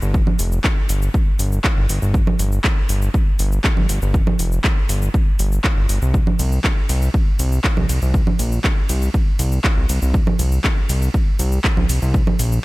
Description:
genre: melodic techno.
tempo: 120 BPM.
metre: 4/4.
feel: straight.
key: unclear.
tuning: A4 = 438 Hz.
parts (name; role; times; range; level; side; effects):
fat analog bass; bass; 0.0-12.6 s; F1 to C2; -18 LUFS; equal; sidechain pumping.
deep house drum kit; drums; 0.0-12.6 s; congas, handclaps, hi-hat, ride cymbal, shaker; -24 LUFS; right 2 dB; overdrive.
electronic kick drum; drums; 0.1-12.2 s; none; -18 LUFS; equal; overdrive.
room: little or no reverb.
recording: none.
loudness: -16 LUFS.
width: side -21 dB against mid.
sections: 0.0-12.6 A section.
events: none.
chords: none.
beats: | 0.14 0.64 1.14 1.64 | 2.14 2.64 3.14 3.64 | 4.14 4.64 5.14 5.64 | 6.14 6.64 7.14 7.64 | 8.14 8.64 9.14 9.64 | 10.14 10.64 11.14 11.64 | 12.14.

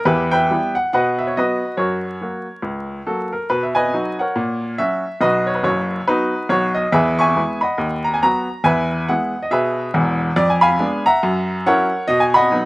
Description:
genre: jazz, stride piano.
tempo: 140 BPM.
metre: 4/4.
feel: swing 59% on 8ths.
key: B major.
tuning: A4 = 441 Hz.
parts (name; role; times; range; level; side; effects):
clear upright piano; solo; 0.0-12.7 s; E1 to C#6; -16 LUFS; equal; none.
room: little or no reverb.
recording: recorded outdoors, with no room sound, vinyl crackle.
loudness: -16 LUFS.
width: side -20 dB against mid.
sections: 0.0-3.5 A section; 3.5-12.7 A section.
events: none.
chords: 0.1 Em; 0.9 B; 1.8 F#; 3.5 B; 4.4 F#/A#; 5.2 B; 6.9 E; 7.8 B/D#; 8.7 E; 10.4 Fdim7; 11.2 F#7; 12.1 B.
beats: | 0.07 0.49 0.92 1.35 | 1.78 2.21 2.64 3.07 | 3.50 3.93 4.36 4.79 | 5.22 5.65 6.08 6.51 | 6.94 7.37 7.80 8.23 | 8.66 9.09 9.52 9.95 | 10.38 10.81 11.24 11.67 | 12.10 12.53.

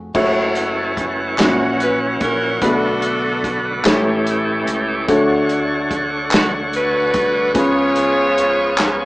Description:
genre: slow gospel.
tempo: 49 BPM (dotted quarters).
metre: 6/8.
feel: straight.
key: F# minor.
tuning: A4 = 437 Hz.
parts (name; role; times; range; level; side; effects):
warm upright piano; accompaniment; 0.0-9.1 s; A2 to E5; -19 LUFS; left 1 dB; none.
fingered electric bass; bass; 0.0-9.1 s; E#1 to D2; -32 LUFS; equal; none.
warm soul drum kit; drums; 0.1-9.0 s; crash cymbal, hi-hat, kick drum, snare drum; -21 LUFS; equal; none.
bright tonewheel organ; sustained chords; 0.2-9.1 s; D3 to C#5; -21 LUFS; right 1 dB; fast rotary speaker.
bright saxophone section; melody; 1.4-9.1 s; C#4 to C#5; -18 LUFS; equal; none.
group handclap; percussion; 1.4-9.1 s; none; -21 LUFS; equal; none.
room: moderate small room reverb, RT60 0.5 s.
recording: band playing live in one room, small speaker sound.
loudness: -15 LUFS.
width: side -20 dB against mid.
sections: 0.1-9.1 A section.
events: drum fill 8.8.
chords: 0.1 F#m7; 1.4 F#7/A#; 2.6 Bm7; 3.9 A7; 5.1 Dmaj7; 7.6 C#7.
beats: | 0.14 1.38 | 2.62 3.85 | 5.08 6.32 | 7.55 8.78.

